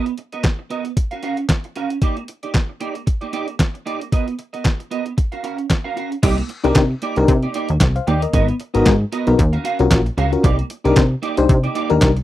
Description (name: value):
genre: early-eighties boogie funk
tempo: 114 BPM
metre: 4/4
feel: swing 56% on 16ths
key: C minor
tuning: A4 = 440 Hz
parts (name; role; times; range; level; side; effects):
- clean electric guitar; riff; 0.0-12.2 s; Bb3 to E#5; -24 LUFS; right 5 dB; ensemble chorus
- detuned 8-bit digital drum machine; drums; 0.1-12.2 s; crash cymbal, handclaps, hi-hat, kick drum, snare drum; -17 LUFS; equal; overdrive
- plucky analog bass; bass; 6.2-12.2 s; Ab1 to C3; -18 LUFS; equal; none
- FM electric piano with tremolo; accompaniment; 6.6-12.1 s; Cb4 to G5; -17 LUFS; left 4 dB; none
room: little or no reverb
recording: dry, close 1970s-style studio recording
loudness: -16 LUFS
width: side -14 dB against mid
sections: 0.0-6.2 A section; 6.2-12.2 B section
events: none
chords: 0.0 Bmaj7; 1.0 F#maj7/C#; 2.0 Ebmaj7/Bb; 4.1 Bmaj7; 5.2 F#maj7/C#; 6.2 Cm9; 8.3 Abm9; 9.4 Ebm9; 10.4 Cm9